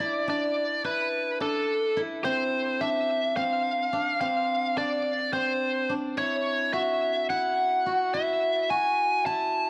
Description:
progressive instrumental, progressive; 214 BPM (eighths); 7/8; straight; A4 = 439 Hz
biting lead guitar; melody; 0.0-9.7 s; A4 to A5; -28 LUFS; equal; overdrive, plate reverb, digital delay
steel-string zither; arpeggios; 0.0-9.7 s; C4 to F#4; -34 LUFS; equal
moderate small room reverb, RT60 0.5 s; dark, warm production; -27 LUFS; mono
0.0-9.7 A section
0.0 D5; 2.2 F5; 6.2 F#7(no3)
0.00 | 0.28 0.56 0.84 1.12 1.40 1.68 1.97 | 2.25 2.53 2.81 3.09 3.37 3.65 3.93 | 4.21 4.49 4.77 5.05 5.33 5.61 5.89 | 6.17 6.46 6.74 7.02 7.30 7.58 7.86 | 8.14 8.42 8.70 8.98 9.26 9.54

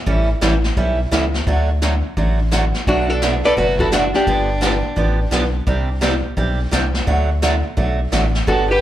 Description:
country, western swing; 171 BPM; 4/4; swing 63% on 8ths; A4 = 440 Hz
picked acoustic archtop guitar; accompaniment; 0.1-8.7 s; B2 to A4; -21 LUFS; right 3 dB; slapback echo
rubbery square bass; bass; 0.1-8.8 s; F#1 to D2; -19 LUFS; equal
jazz brush drum kit; drums; 0.1-8.8 s; brushed snare drum, hi-hat, kick drum, snare drum; -23 LUFS; left 1 dB
archtop guitar, miked and amplified; melody; 2.9-5.5, 8.5-8.8 s; D4 to D5; -18 LUFS; left 1 dB; slapback echo
rich fiddle; second line; 2.9-5.5, 8.5-8.8 s; D4 to A4; -24 LUFS; right 3 dB; slapback echo
light reverb; live gig heard through the venue's PA, club reverb; -15 LUFS; side -12 dB against mid
0.0-8.8 A section
0.1 A7; 1.5 D; 2.9 Bm7; 4.3 G7; 5.7 Csus2; 7.1 D
| 0.07 0.42 0.77 1.12 | 1.47 1.82 2.17 2.52 | 2.87 3.22 3.57 3.92 | 4.27 4.62 4.97 5.32 | 5.67 6.02 6.37 6.72 | 7.07 7.42 7.77 8.12 | 8.47

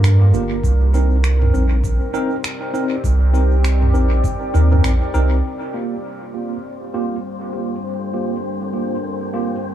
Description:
ambient dub; 100 BPM; 4/4; swing 59% on 16ths; G minor; A4 = 443 Hz
deep dark ambient pad; sustained chords; 0.0-9.7 s; G3 to Eb5; -26 LUFS; left 2 dB; chorus, built-in reverb
soft dub sub bass; bass; 0.0-5.4 s; G1 to G2; -14 LUFS; right 1 dB
organic electronic drum kit; drums; 0.0-5.3 s; cabasa, finger snaps, toms; -27 LUFS; right 3 dB; dub echo
tine electric piano; stabs; 0.3-9.5 s; Bb3 to Bb4; -24 LUFS; right 2 dB; overdrive, medium stereo tremolo, low-pass filter, dub echo
electronic kick drum; drums; 0.6-4.4 s; -24 LUFS; equal; overdrive
wind-like tuned noise texture; texture; 6.1-9.7 s; C4 to C5; -29 LUFS; left 5 dB; built-in reverb
light reverb, digital ambience; echo-heavy mix; -16 LUFS; side -11 dB against mid
0.0-5.4 A section; 5.4-9.7 B section
0.0 Gm7; 0.6 Cm7; 5.4 Gm7
0.04 | 0.64 1.24 1.84 2.44 | 3.04 3.64 4.24 4.84 | 5.44 6.04 6.64 7.24 | 7.84 8.44 9.04 9.64

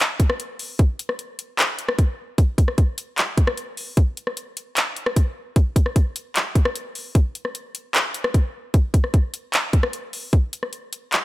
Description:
hip hop; 151 BPM; 4/4; half-time
trap drum kit; drums; 0.0-11.2 s; handclaps, hi-hat, kick drum, rim click; -18 LUFS; equal
digital ambience; -19 LUFS; side -18 dB against mid
0.0-7.2 A section; 7.2-11.2 B section
0.00 0.40 | 0.79 1.19 1.59 1.99 | 2.38 2.78 3.18 3.57 | 3.97 4.37 4.77 5.16 | 5.56 5.96 6.36 6.75 | 7.15 7.55 7.95 8.34 | 8.74 9.14 9.53 9.93 | 10.33 10.73 11.12

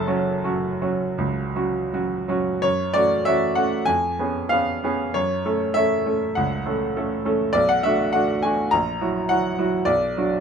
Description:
classical, romantic character piece for solo piano; 79-105 BPM; 4/4; rubato; F# minor; A4 = 439 Hz
bright baby grand piano; solo; 0.0-10.4 s; F#1 to A#5; -20 LUFS; right 1 dB
moderate large studio reverb, RT60 0.8 s; -20 LUFS; side -7 dB against mid
0.0-2.6 A section; 2.6-10.4 B section
0.0 F#m; 3.9 C#7/E#; 5.1 F#m; 7.6 Bm7; 8.7 F#7/A#; 9.9 Bm
0.44 1.18 1.92 | 2.63 3.26 3.87 4.51 | 5.15 5.76 6.36 6.96 | 7.55 8.14 8.72 9.30 | 9.88

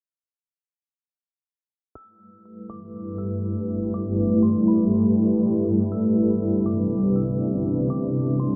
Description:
hip hop; 121 BPM; 4/4; half-time; G major; A4 = 440 Hz
granular cloud pad; sustained chords; 3.0-8.6 s; G2 to B4; -22 LUFS; equal; built-in reverb
metallic FM bell; melody; 2.0-8.6 s; B5 to E6; -49 LUFS; equal; chorus, delay
light reverb, digital ambience; dark, warm production, low-pass filter; -22 LUFS; mono
2.0-8.6 A section
filter sweep 2.0-8.6
2.0 G6; 5.9 Cmaj7; 7.9 Am7
| 1.95 2.45 2.94 3.44 | 3.94 4.43 4.93 5.42 | 5.92 6.41 6.91 7.41 | 7.90 8.40

